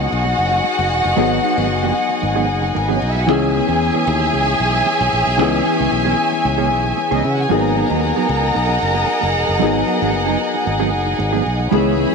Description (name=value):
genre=disco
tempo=114 BPM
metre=4/4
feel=straight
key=G# minor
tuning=A4 = 436 Hz
part: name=warm studio violin section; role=second line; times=0.0-12.1 s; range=A#3 to A#5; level=-20 LUFS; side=equal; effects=none
part: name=mellow electric guitar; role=accompaniment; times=0.0-12.1 s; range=E3 to G#4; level=-22 LUFS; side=right 16 dB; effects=none
part: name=warm concert grand piano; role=accompaniment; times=0.0-12.1 s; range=D#3 to G#4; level=-21 LUFS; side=left 13 dB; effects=none
part: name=warm studio string section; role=sustained chords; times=0.0-12.1 s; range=G#4 to B5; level=-21 LUFS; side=equal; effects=none
part: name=modern bright fingered electric bass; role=bass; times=0.0-12.0 s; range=E1 to C#3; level=-21 LUFS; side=right 1 dB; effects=none
room=moderate spring reverb, RT60 1.3 s, studio reverb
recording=1960s-style stereo with parts hard left and right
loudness=-15 LUFS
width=side -4 dB against mid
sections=0.0-12.1 A section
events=none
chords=0.0 G#m7; 3.3 C#m7; 7.5 G#m7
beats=0.11 0.64 | 1.17 1.70 2.22 2.75 | 3.28 3.81 4.33 4.86 | 5.39 5.92 6.44 6.97 | 7.50 8.03 8.55 9.08 | 9.61 10.13 10.66 11.19 | 11.72